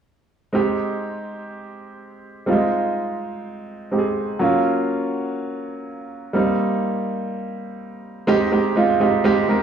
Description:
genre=pop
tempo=124 BPM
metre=4/4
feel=straight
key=unclear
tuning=A4 = 441 Hz
part: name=warm grand piano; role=solo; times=0.5-9.6 s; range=Gb3 to Bb4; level=-20 LUFS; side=right 2 dB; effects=cassette tape
room=moderate spring reverb, RT60 1.8 s, studio reverb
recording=home recording on cassette, small room reverb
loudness=-19 LUFS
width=side -8 dB against mid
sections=0.5-8.3 A section; 8.3-9.6 B section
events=none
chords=0.5 Abmaj7; 2.5 Fm7/Ab; 4.4 Gbmaj7; 6.3 Eb6/G; 8.3 Abmaj7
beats=| 0.54 1.02 1.50 1.99 | 2.47 2.96 3.44 3.92 | 4.41 4.89 5.38 5.86 | 6.34 6.83 7.31 7.79 | 8.28 8.76 9.25

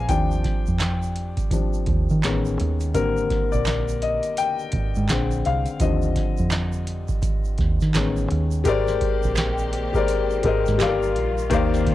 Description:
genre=R&B, neo-soul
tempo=84 BPM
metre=4/4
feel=swing 61% on 16ths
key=unclear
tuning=A4 = 440 Hz
part: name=warm upright piano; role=accompaniment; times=0.0-11.9 s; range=D3 to Bb5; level=-24 LUFS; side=left 5 dB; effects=cassette tape
part: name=deep dub fingered electric bass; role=bass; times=0.0-11.8 s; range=G1 to Eb3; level=-24 LUFS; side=right 1 dB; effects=none
part: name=booming analog drum machine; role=drums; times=0.1-11.9 s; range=handclaps, hi-hat, kick drum, snare drum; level=-25 LUFS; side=right 1 dB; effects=cassette tape
part: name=egg shaker and finger snaps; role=percussion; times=0.1-11.9 s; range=none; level=-38 LUFS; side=right 10 dB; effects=none
part: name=warm studio string section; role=sustained chords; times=8.7-11.9 s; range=Eb3 to G4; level=-32 LUFS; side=equal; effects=cassette tape
room=little or no reverb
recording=home recording on cassette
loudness=-20 LUFS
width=side -14 dB against mid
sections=0.0-8.7 A section; 8.7-11.9 B section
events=upright piano solo 0.0-8.7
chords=0.1 Ebmaj13; 2.2 Amaj9#11; 2.9 Abmaj9#11; 5.1 Bb9; 5.8 Ebmaj13; 7.9 Amaj9#11; 8.7 Abmaj9#11; 10.8 Gm7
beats=| 0.09 0.80 1.51 2.23 | 2.94 3.66 4.37 5.09 | 5.80 6.51 7.23 7.94 | 8.66 9.37 10.09 10.80 | 11.52

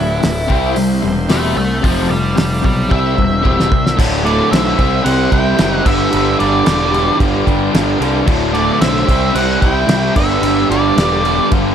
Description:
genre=classic rock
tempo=112 BPM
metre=4/4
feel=straight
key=unclear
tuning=A4 = 439 Hz
part: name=octave-fuzz lead guitar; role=melody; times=0.0-11.5 s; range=E4 to A5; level=-19 LUFS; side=right 1 dB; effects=distortion, plate reverb
part: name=bright tonewheel organ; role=sustained chords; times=0.0-11.7 s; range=G3 to E5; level=-27 LUFS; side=equal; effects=none
part: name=cranked stack guitar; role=riff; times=0.0-11.7 s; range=D2 to C4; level=-19 LUFS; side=left 11 dB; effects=overdrive
part: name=raw garage guitar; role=riff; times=0.0-11.7 s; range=D2 to C4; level=-21 LUFS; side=right 13 dB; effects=overdrive
part: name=fuzz picked electric bass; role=bass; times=0.0-11.7 s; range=D1 to C2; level=-19 LUFS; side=right 1 dB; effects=overdrive
part: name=cloth-damped thuddy drum kit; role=drums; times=0.2-11.6 s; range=crash cymbal, hi-hat, kick drum, snare drum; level=-18 LUFS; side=equal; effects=none
part: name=overdriven electric guitar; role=riff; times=4.0-11.7 s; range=D2 to C4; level=-22 LUFS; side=right 1 dB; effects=none
part: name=octave-fuzz lead guitar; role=second line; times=4.3-11.5 s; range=G3 to E4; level=-23 LUFS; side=right 5 dB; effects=distortion, plate reverb
room=light reverb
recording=none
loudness=-12 LUFS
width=side -8 dB against mid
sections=0.0-4.0 A section; 4.0-11.7 B section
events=lead electric guitar solo 0.0-4.0; drum fill 2.9-4.0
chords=0.5 C; 1.8 F; 2.9 C; 4.0 D; 4.8 C; 5.9 G; 8.3 D; 9.1 C; 10.2 G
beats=0.23 0.77 1.30 | 1.84 2.38 2.91 3.45 | 3.98 4.52 5.06 5.59 | 6.13 6.67 7.20 7.74 | 8.28 8.82 9.36 9.89 | 10.44 10.97 11.52

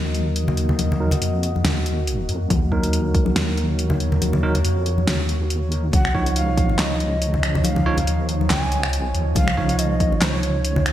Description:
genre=deep dubstep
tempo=140 BPM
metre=4/4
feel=swing 55% on 16ths, half-time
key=Eb minor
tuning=A4 = 440 Hz
part: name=deep dark ambient pad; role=sustained chords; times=0.0-10.9 s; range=F3 to Eb5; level=-29 LUFS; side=equal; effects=chorus, built-in reverb, vintage 12-bit sampler grit
part: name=bell-like tine electric piano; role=stabs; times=0.0-10.9 s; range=F3 to Db5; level=-27 LUFS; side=right 2 dB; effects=low-pass filter, dub echo
part: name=deep soft wobble bass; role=bass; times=0.0-10.9 s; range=Db2 to F2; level=-22 LUFS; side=equal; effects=chorus, tube saturation
part: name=deep house drum kit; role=drums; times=0.1-10.9 s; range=finger snaps, handclaps, hi-hat, snare drum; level=-25 LUFS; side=equal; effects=gated reverb
part: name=congas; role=percussion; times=0.5-10.8 s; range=none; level=-26 LUFS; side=left 2 dB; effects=none
part: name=electronic kick drum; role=drums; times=2.5-3.2, 5.9-6.7, 9.4-10.1 s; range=none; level=-20 LUFS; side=equal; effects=none
part: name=breathy long shakuhachi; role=melody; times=5.9-10.9 s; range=Db5 to Ab5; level=-27 LUFS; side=equal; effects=dub echo
room=moderate lush hall reverb, RT60 1.8 s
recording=bright 1980s-style digital production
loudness=-18 LUFS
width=side -12 dB against mid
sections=0.0-10.9 A section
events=filter sweep on tine electric piano 0.0-10.9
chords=0.0 Ebm; 5.9 Dbadd9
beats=0.36 | 0.79 1.22 1.65 2.08 | 2.50 2.93 3.36 3.79 | 4.22 4.65 5.08 5.50 | 5.93 6.36 6.79 7.22 | 7.65 8.07 8.50 8.93 | 9.36 9.79 10.22 10.65

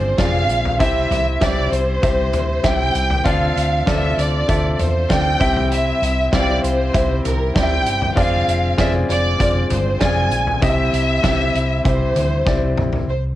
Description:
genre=piano-driven pop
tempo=98 BPM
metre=4/4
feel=straight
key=C major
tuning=A4 = 440 Hz
part: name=warm studio violin section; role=melody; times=0.0-13.2 s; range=Bb4 to Ab5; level=-21 LUFS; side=right 1 dB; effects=cassette tape
part: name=clear baby grand piano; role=accompaniment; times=0.0-13.1 s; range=C3 to G5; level=-22 LUFS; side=left 2 dB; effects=cassette tape
part: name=tonewheel organ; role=sustained chords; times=0.0-13.1 s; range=C3 to F4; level=-33 LUFS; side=right 2 dB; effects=none
part: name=hollow-body short-scale fingered electric bass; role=bass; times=0.0-13.3 s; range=F1 to E2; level=-21 LUFS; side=equal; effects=none
part: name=loose indie drum kit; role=drums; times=0.2-13.1 s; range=hi-hat, kick drum, snare drum, toms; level=-22 LUFS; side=equal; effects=cassette tape
room=light reverb, studio ambience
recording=home recording on cassette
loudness=-15 LUFS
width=side -14 dB against mid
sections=0.0-13.1 A section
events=drum fill 12.5-13.1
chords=0.0 Fm6; 0.8 C; 3.3 Dm7; 5.4 C; 8.2 Fm6; 10.6 C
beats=0.19 | 0.80 1.42 2.03 2.64 | 3.26 3.87 4.49 5.10 | 5.71 6.33 6.94 7.55 | 8.17 8.78 9.40 10.01 | 10.62 11.24 11.85 12.47 | 13.08

